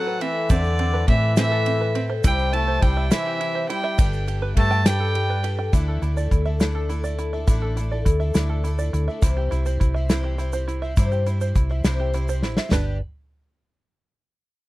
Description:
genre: indie folk with a building arrangement.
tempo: 69 BPM (dotted quarters).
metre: 6/8.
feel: straight.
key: G major.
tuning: A4 = 440 Hz.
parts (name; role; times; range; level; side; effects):
warm fiddle; melody; 0.0-5.5 s; D5 to A5; -26 LUFS; right 2 dB; tape echo.
clear trombone; second line; 0.0-5.5 s; D3 to A3; -29 LUFS; left 4 dB; none.
picked twelve-string acoustic guitar; accompaniment; 0.0-13.0 s; A2 to C5; -30 LUFS; left 4 dB; none.
open-back banjo; arpeggios; 0.0-13.0 s; C4 to G5; -31 LUFS; right 6 dB; none.
natural country drum kit; drums; 0.2-12.9 s; hi-hat, kick drum, ride cymbal, snare drum, toms; -20 LUFS; equal; none.
hollow-body short-scale fingered electric bass; bass; 0.5-13.0 s; G1 to A2; -23 LUFS; equal; none.
tube shaker; percussion; 0.5-13.0 s; none; -42 LUFS; right 11 dB; none.
room: little or no reverb.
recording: dry, close 1970s-style studio recording.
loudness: -19 LUFS.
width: side -18 dB against mid.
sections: 0.0-5.7 A section; 5.7-12.7 B section; 12.7-14.5 C section.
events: drum fill 12.4.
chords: 0.0 Amadd9; 2.2 C; 4.0 Gadd9; 5.7 Dsus2; 9.2 C; 12.7 G.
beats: | 0.50 1.37 | 2.24 3.11 | 3.98 4.86 | 5.73 6.60 | 7.48 8.35 | 9.23 10.10 | 10.98 11.85 | 12.72.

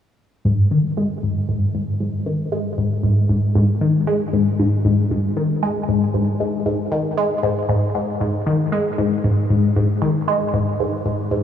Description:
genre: ambient.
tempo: 116 BPM.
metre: 4/4.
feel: straight.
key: unclear.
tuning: A4 = 440 Hz.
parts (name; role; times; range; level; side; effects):
resonant blip pluck; solo; 0.4-11.4 s; G#2 to G#3; -17 LUFS; left 1 dB; phaser, tape echo.
room: wet huge ambient reverb, RT60 7.6 s.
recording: small room ambience.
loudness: -17 LUFS.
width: side -9 dB against mid.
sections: 0.5-11.4 A section.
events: none.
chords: none.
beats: | 0.45 0.97 1.49 2.00 | 2.52 3.04 3.56 4.07 | 4.59 5.11 5.63 6.14 | 6.66 7.18 7.70 8.21 | 8.73 9.25 9.76 10.28 | 10.80 11.32.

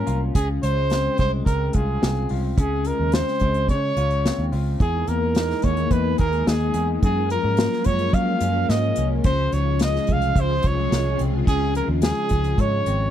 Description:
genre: indie pop, bedroom pop.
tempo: 108 BPM.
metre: 4/4.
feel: straight.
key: Db major.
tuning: A4 = 442 Hz.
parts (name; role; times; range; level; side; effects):
clear trumpet; melody; 0.0-13.1 s; Ab4 to F5; -25 LUFS; right 1 dB; wide subtle chorus, slapback echo.
electric guitar through a small old amp; accompaniment; 0.0-13.1 s; Gb2 to G#4; -27 LUFS; left 6 dB; analog chorus, vibrato effect.
vintage muted picked electric bass; bass; 0.1-13.1 s; Ab1 to Gb3; -23 LUFS; right 1 dB; none.
unplugged drum kit; drums; 0.1-13.0 s; hi-hat, kick drum, snare drum; -22 LUFS; equal; none.
string machine, violas; sustained chords; 4.8-13.1 s; Db3 to Bb4; -30 LUFS; right 1 dB; ensemble chorus.
room: little or no reverb.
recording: dry, close 1970s-style studio recording.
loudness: -19 LUFS.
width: side -10 dB against mid.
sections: 0.0-13.1 A section.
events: none.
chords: 0.4 Dbmaj7; 4.8 Emaj7#11; 7.0 Gbmaj7; 9.3 Dbmaj7.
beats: | 0.35 0.91 1.46 2.02 | 2.58 3.13 3.69 4.25 | 4.80 5.36 5.92 6.47 | 7.03 7.58 8.14 8.70 | 9.25 9.81 10.37 10.92 | 11.48 12.03 12.59.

